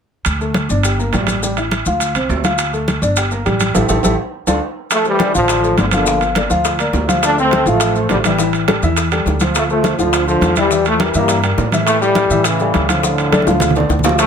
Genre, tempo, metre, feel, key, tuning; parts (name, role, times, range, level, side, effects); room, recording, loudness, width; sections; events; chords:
latin, salsa; 207 BPM; 4/4; straight; D minor; A4 = 439 Hz
timbales; percussion; 0.2-14.3 s; -21 LUFS; right 6 dB
upright bass; bass; 0.3-14.3 s; G1 to A2; -20 LUFS; right 1 dB
congas; percussion; 0.3-14.3 s; -21 LUFS; left 1 dB
maracas; percussion; 0.3-14.3 s; -26 LUFS; left 4 dB
dark baby grand piano; accompaniment; 0.4-14.2 s; E3 to G5; -19 LUFS; left 2 dB
bright trombone section; melody; 4.9-14.3 s; A2 to D4; -16 LUFS; left 1 dB; plate reverb, tape echo
bongos; percussion; 4.9-14.3 s; -23 LUFS; left 6 dB
moderate studio reverb, RT60 0.5 s; -13 LUFS; side -7 dB against mid
0.3-4.9 A section; 4.9-14.2 B section
band accent 3.8-4.9; drum fill 13.3-14.2
0.3 D5; 0.8 Gm; 1.4 A5; 2.0 Dm7; 3.2 Gm; 3.8 A5; 4.3 Dm; 4.9 Dm7; 6.1 Gm7; 7.2 Dm7; 8.4 A5; 9.6 Dm7; 10.7 Edim; 11.9 A5; 12.4 A7; 13.0 Dm